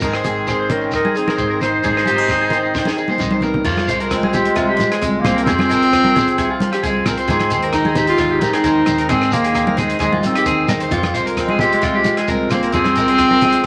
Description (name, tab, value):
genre	highlife guitar band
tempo	132 BPM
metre	4/4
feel	straight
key	F minor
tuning	A4 = 441 Hz
part	picked swing-style acoustic guitar	accompaniment	0.0-13.7 s	F2 to Ab4	-24 LUFS	equal	none
part	electric guitar at the edge of break-up	arpeggios	0.0-13.6 s	Eb4 to C5	-23 LUFS	equal	none
part	upright bass	bass	0.0-13.6 s	Ab1 to Ab2	-28 LUFS	equal	none
part	compact cocktail drum kit	drums	0.0-13.7 s	crash cymbal, hi-hat, kick drum, rim click, snare drum, toms	-29 LUFS	equal	none
part	shekere	percussion	0.0-13.6 s	none	-33 LUFS	equal	none
part	congas	percussion	0.2-13.5 s	none	-26 LUFS	equal	none
part	breathy clarinet	melody	0.5-13.7 s	Ab3 to C5	-20 LUFS	equal	none
part	clear trumpet	second line	0.5-3.2 s	C4 to Eb4	-28 LUFS	equal	none
part	mellow tonewheel organ	sustained chords	3.7-13.7 s	F4 to F5	-33 LUFS	equal	none
room	moderate studio reverb, RT60 0.7 s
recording	none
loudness	-17 LUFS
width	mono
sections	0.0-3.7 A section; 3.7-13.7 B section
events	drum fill 2.8-3.7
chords	0.0 Ab; 3.7 Fm; 7.3 Ab; 10.9 Fm